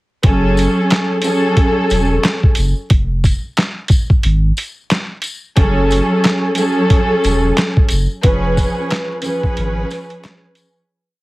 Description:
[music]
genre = hip hop, boom-bap hip-hop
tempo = 90 BPM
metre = 4/4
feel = swing 58% on 16ths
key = F# harmonic minor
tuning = A4 = 440 Hz
[part]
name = dark studio string section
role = accompaniment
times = 0.2-10.8 s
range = E#3 to B4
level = -16 LUFS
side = equal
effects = none
[part]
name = sub bass with octave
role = bass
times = 0.2-9.8 s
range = E1 to Ab1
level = -17 LUFS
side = equal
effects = none
[part]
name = boom bap sampler-style drum kit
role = drums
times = 0.2-10.7 s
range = handclaps, hi-hat, kick drum, snare drum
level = -14 LUFS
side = equal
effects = none
[part]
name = tambourine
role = percussion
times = 0.6-10.8 s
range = none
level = -30 LUFS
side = left 4 dB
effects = none
[sound]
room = little or no reverb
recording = heavily compressed radio sound, vinyl crackle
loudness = -13 LUFS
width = side -20 dB against mid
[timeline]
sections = 0.2-10.9 hook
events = fade-out 8.2-10.9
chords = 0.2 F#madd9; 2.9 Fm; 5.6 F#madd9; 8.2 C#7/E#

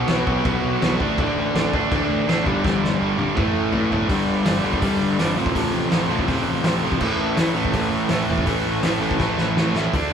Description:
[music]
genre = punk rock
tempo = 164 BPM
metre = 4/4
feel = straight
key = unclear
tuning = A4 = 440 Hz
[part]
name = biting overdriven guitar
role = riff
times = 0.0-10.1 s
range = F2 to D4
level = -24 LUFS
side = right 8 dB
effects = none
[part]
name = crunchy overdriven guitar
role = riff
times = 0.0-10.1 s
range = F2 to D4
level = -25 LUFS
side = left 8 dB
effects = none
[part]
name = fuzz guitar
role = riff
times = 0.0-9.9 s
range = F2 to D4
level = -26 LUFS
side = equal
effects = distortion
[part]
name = fuzz picked electric bass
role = bass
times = 0.0-10.1 s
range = E1 to A2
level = -27 LUFS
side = left 1 dB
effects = overdrive
[part]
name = loose indie drum kit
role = drums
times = 0.1-10.0 s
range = crash cymbal, hi-hat, kick drum, snare drum, toms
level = -24 LUFS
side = equal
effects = none
[sound]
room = moderate studio reverb, RT60 0.6 s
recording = band playing live in one room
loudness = -18 LUFS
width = side -7 dB against mid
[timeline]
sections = 0.0-4.1 A section; 4.1-9.9 B section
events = drum fill 2.6-4.1, 9.2-9.9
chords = 0.0 B5; 1.0 D5/A; 2.4 G5; 3.4 A5; 4.1 G5; 5.4 F/A; 7.0 A5

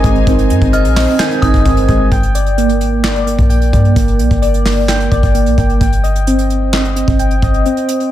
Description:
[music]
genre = hip hop, trap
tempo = 130 BPM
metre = 4/4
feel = half-time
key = G phrygian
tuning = A4 = 440 Hz
[part]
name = dark grand piano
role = accompaniment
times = 0.0-2.1 s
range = Eb3 to Eb5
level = -18 LUFS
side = equal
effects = low-pass filter
[part]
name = bright symphonic string section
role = sustained chords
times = 0.0-2.1 s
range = Eb4 to Ab5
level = -28 LUFS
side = left 3 dB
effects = none
[part]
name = soft electric-piano-like synth keys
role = arpeggios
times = 0.0-8.1 s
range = Bb3 to Ab5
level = -15 LUFS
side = right 1 dB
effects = chorus, phaser, low-pass filter, ping-pong delay
[part]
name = clean 808-style bass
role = bass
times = 0.0-7.6 s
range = G1 to G2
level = -14 LUFS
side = equal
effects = none
[part]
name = soft brush drum kit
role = drums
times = 0.0-8.1 s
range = handclaps, hi-hat, kick drum, snare drum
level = -16 LUFS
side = equal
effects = none
[part]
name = dark detuned synth bell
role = second line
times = 0.7-2.1 s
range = Eb6 to G6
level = -23 LUFS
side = right 1 dB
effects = chorus, ping-pong delay
[sound]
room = little or no reverb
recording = none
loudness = -10 LUFS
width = side -12 dB against mid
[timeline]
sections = 0.0-2.1 A section; 2.1-8.1 B section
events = break 7.7-8.1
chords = 0.0 Ab/G; 2.1 Gm; 5.8 Cm/G

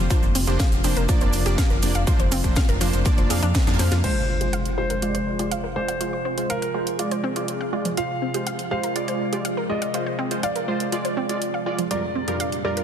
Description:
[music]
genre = progressive house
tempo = 122 BPM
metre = 4/4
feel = straight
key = F dorian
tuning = A4 = 440 Hz
[part]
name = evolving wavetable pad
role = sustained chords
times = 0.0-12.8 s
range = F2 to Ab4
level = -31 LUFS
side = equal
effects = chorus, built-in reverb, sidechain pumping
[part]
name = analog pluck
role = arpeggios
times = 0.0-12.8 s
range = F3 to F5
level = -29 LUFS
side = equal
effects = chorus, sidechain pumping, dub echo
[part]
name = supersaw stab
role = stabs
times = 0.0-12.8 s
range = F2 to F5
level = -28 LUFS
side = right 2 dB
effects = sidechain pumping, low-pass filter, dub echo
[part]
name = dark detuned saw bass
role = bass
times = 0.0-4.0 s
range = F1 to F2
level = -23 LUFS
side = equal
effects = sidechain pumping
[part]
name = electronic kick drum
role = drums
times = 0.1-3.6 s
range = none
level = -20 LUFS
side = equal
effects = none
[part]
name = house drum kit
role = drums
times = 0.1-12.8 s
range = crash cymbal, hi-hat, snare drum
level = -30 LUFS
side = right 1 dB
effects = overdrive
[part]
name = open jazz drum kit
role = drums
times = 0.1-4.0 s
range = hi-hat, snare drum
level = -38 LUFS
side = right 3 dB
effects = none
[part]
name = cabasa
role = percussion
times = 0.1-4.0 s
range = none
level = -35 LUFS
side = right 2 dB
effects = none
[part]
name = warm concert grand piano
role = melody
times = 4.0-12.8 s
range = Bb4 to F5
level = -30 LUFS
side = equal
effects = sidechain pumping, digital delay
[part]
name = impact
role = sound effects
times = 4.0-6.0 s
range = none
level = -28 LUFS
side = equal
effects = none
[sound]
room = light reverb, studio reverb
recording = dense, heavily limited modern master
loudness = -20 LUFS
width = side -8 dB against mid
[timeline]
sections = 0.0-4.0 A section; 4.0-12.8 B section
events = filter sweep on synth arpeggio sound 0.0-4.0; drum fill 3.7-4.0; impact 4.0-6.0; filter sweep on supersaw synth 4.0-12.8; filter sweep on ambient pad 4.0-12.8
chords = 0.1 Bbadd9/F; 4.0 Fm; 11.9 Gm7/F

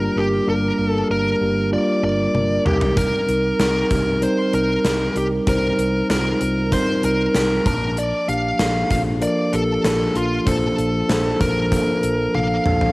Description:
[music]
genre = 1980s-style pop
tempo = 96 BPM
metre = 4/4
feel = straight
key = Bb major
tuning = A4 = 440 Hz
[part]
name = bluesy overdriven lead guitar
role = melody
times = 0.0-12.9 s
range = F4 to F5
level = -22 LUFS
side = equal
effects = distortion, cassette tape
[part]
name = mellow tine electric piano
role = accompaniment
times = 0.0-12.9 s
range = F3 to A5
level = -20 LUFS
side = equal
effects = slow stereo tremolo, cassette tape
[part]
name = fretless electric bass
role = bass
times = 0.0-12.9 s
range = G1 to C2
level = -26 LUFS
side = equal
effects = lush chorus
[part]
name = gated 80s drum kit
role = drums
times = 2.3-12.9 s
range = hi-hat, kick drum, snare drum, toms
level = -23 LUFS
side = equal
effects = cassette tape
[sound]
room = light reverb, small room ambience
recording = home recording on cassette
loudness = -17 LUFS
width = side -22 dB against mid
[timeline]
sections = 0.0-12.9 A section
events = drum fill 2.3-3.0, 12.3-12.9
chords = 0.0 Gm; 2.7 Cm7; 7.7 Bbmaj7

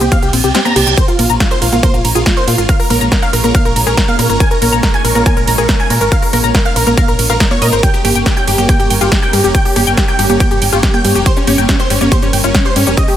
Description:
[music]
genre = uplifting trance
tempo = 140 BPM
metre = 4/4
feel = straight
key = unclear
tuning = A4 = 440 Hz
[part]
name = big supersaw lead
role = melody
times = 0.0-13.2 s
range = Db4 to Bb5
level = -17 LUFS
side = right 1 dB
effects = vintage 12-bit sampler grit, sidechain pumping, digital delay
[part]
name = analog pluck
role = second line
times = 0.0-13.2 s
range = Db4 to Bb5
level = -22 LUFS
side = left 1 dB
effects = chorus, sidechain pumping, dub echo
[part]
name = tight sequenced synth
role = arpeggios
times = 0.0-13.1 s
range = G3 to Bb5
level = -21 LUFS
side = left 4 dB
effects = chorus, sidechain pumping, dub echo
[part]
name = solid FM bass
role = bass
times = 0.0-12.9 s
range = F1 to Bb2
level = -16 LUFS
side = equal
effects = sidechain pumping
[part]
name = big-room dance drum kit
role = drums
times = 0.0-13.2 s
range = congas, hi-hat, ride cymbal, shaker, snare drum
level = -16 LUFS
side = right 2 dB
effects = overdrive
[part]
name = electronic kick drum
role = drums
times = 0.1-13.1 s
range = none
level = -13 LUFS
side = equal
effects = overdrive
[part]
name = reverse cymbal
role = sound effects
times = 0.3-1.0 s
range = none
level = -19 LUFS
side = right 7 dB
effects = none
[part]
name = analog string pad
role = sustained chords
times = 1.0-13.2 s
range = G3 to Db5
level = -22 LUFS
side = equal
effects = ensemble chorus, sidechain pumping
[sound]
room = digital ambience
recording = none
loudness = -9 LUFS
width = side -11 dB against mid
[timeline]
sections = 0.0-13.2 A section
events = reverse cymbal 0.3-1.0; kick drops out 0.5-1.0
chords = 0.0 C5; 1.0 Bbm7; 7.8 Gdim

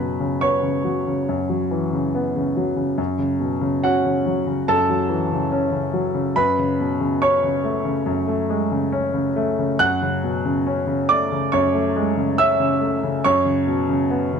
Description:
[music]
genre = neoclassical minimalist piano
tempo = 70 BPM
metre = 4/4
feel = rubato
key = F# minor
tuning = A4 = 439 Hz
[part]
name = clear grand piano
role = solo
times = 0.0-14.4 s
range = F#2 to F#6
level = -18 LUFS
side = equal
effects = none
[sound]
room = light reverb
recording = dark, warm production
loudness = -18 LUFS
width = side -6 dB against mid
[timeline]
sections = 0.0-14.4 A section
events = none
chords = 0.0 Bsus2/F#; 3.0 F#m7; 6.4 Amaj7/F#; 9.8 F#m7; 13.2 Bsus2/F#

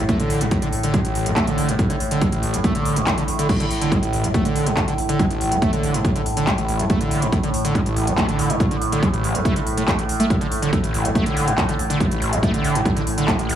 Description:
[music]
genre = driving peak-time techno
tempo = 141 BPM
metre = 4/4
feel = straight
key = unclear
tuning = A4 = 440 Hz
[part]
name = screaming distorted acid line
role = riff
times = 0.0-13.6 s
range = A1 to A3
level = -22 LUFS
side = right 1 dB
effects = distortion, analog chorus, sidechain pumping, dub echo
[part]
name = saturated sub bass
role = bass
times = 0.0-13.6 s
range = A1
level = -29 LUFS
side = equal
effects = overdrive, sidechain pumping, low-pass filter
[part]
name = overtone-sweeping drone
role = drone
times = 0.0-13.6 s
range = A2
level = -25 LUFS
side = right 1 dB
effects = chorus, built-in reverb, phaser, sidechain pumping
[part]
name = electronic kick drum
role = drums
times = 0.1-13.4 s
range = none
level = -21 LUFS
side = equal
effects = overdrive
[part]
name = techno drum kit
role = drums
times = 0.1-13.6 s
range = crash cymbal, handclaps, hi-hat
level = -27 LUFS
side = equal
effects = overdrive, sidechain pumping on hats, sidechain pumping on cymbals
[sound]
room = moderate plate reverb, RT60 1.5 s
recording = small room reverb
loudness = -18 LUFS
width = side -10 dB against mid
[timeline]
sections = 0.0-13.6 A section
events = none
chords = 0.0 Asus4

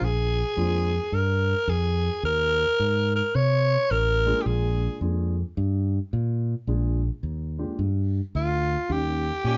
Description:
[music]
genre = blues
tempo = 108 BPM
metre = 4/4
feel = swing 64% on 8ths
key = Bb mixolydian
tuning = A4 = 440 Hz
[part]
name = growling tenor saxophone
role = melody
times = 0.0-5.0, 8.4-9.6 s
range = F4 to Db5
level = -27 LUFS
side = equal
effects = none
[part]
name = fingered electric bass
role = bass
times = 0.0-9.6 s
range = A1 to C3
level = -27 LUFS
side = equal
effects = none
[part]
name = dark concert grand piano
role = accompaniment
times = 0.6-0.9, 4.3-9.2 s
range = F3 to Ab4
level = -33 LUFS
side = equal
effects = none
[part]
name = warm saxophone section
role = stabs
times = 9.5-9.6 s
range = Db4 to G4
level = -34 LUFS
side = equal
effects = none
[sound]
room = moderate studio ambience, RT60 0.5 s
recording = band playing live in one room, nothing above 7.6 kHz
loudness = -25 LUFS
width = mono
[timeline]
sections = 0.0-9.6 A section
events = none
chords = 0.0 Bb7; 2.2 Eb5; 4.5 Bb7; 8.9 Eb7

